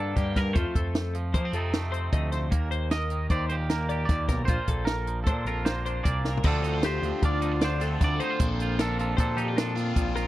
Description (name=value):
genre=math rock and midwest emo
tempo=153 BPM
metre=5/4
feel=straight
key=unclear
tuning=A4 = 440 Hz
part: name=twangy electric guitar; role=melody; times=0.0-10.1 s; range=G4 to Eb5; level=-33 LUFS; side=right 3 dB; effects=none
part: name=twangy electric guitar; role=accompaniment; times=0.0-10.3 s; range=Eb2 to G4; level=-35 LUFS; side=right 5 dB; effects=none
part: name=twelve-string electric guitar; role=arpeggios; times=0.0-10.3 s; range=F4 to Eb5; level=-34 LUFS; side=left 6 dB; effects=wide subtle chorus
part: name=growling picked electric bass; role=bass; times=0.0-10.3 s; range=Bb1 to F3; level=-29 LUFS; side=equal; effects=overdrive
part: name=compact cocktail drum kit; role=drums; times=0.2-10.2 s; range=crash cymbal, hi-hat, kick drum, snare drum, toms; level=-27 LUFS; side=equal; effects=none
part: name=overdriven electric guitar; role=riff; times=6.4-10.3 s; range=Bb2 to A4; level=-33 LUFS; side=left 1 dB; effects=phaser
room=little or no reverb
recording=dry, close 1970s-style studio recording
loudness=-24 LUFS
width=side -15 dB against mid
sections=0.0-6.4 A section; 6.4-10.3 B section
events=drum fill 6.2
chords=0.0 Gm7; 0.6 F7; 2.5 Ebmaj7; 4.5 Bbmaj7; 6.4 Dm7; 8.4 Bbmaj9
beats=0.17 | 0.56 0.95 1.34 1.74 2.13 | 2.52 2.91 3.31 3.70 4.09 | 4.48 4.88 5.27 5.66 6.05 | 6.44 6.83 7.22 7.61 8.00 | 8.39 8.79 9.18 9.57 9.96